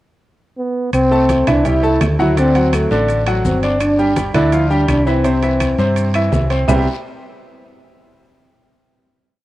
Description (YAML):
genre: latin, salsa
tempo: 167 BPM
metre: 4/4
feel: straight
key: C major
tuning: A4 = 440 Hz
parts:
  - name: mellow trombone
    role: melody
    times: 0.6-6.3 s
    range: A3 to E4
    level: -16 LUFS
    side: equal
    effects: none
  - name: hollow-body short-scale fingered electric bass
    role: bass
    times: 0.9-6.9 s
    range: G1 to G2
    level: -18 LUFS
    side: equal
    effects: none
  - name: claves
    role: percussion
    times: 0.9-6.8 s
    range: none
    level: -31 LUFS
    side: left 8 dB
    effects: none
  - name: congas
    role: percussion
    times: 0.9-6.8 s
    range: none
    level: -24 LUFS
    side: equal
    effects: none
  - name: guiro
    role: percussion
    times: 0.9-6.8 s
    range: none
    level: -37 LUFS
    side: left 6 dB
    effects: none
  - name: maracas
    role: percussion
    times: 0.9-6.8 s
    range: none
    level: -41 LUFS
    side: left 8 dB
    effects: none
  - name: timbales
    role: percussion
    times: 0.9-6.8 s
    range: none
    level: -28 LUFS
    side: right 4 dB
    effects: none
  - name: bright baby grand piano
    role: accompaniment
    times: 1.1-6.9 s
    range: C3 to D6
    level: -19 LUFS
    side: equal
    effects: none
room: light reverb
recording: worn, warbling old tape, cassette tape, warbly pitch drift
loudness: -13 LUFS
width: side -16 dB against mid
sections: 0.0-0.9 pickup bar; 0.9-6.7 A section; 6.7-8.1 final chord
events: none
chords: 0.0 N.C.; 0.9 C6; 2.4 D7; 3.8 G5; 5.2 C; 6.7 Cmaj7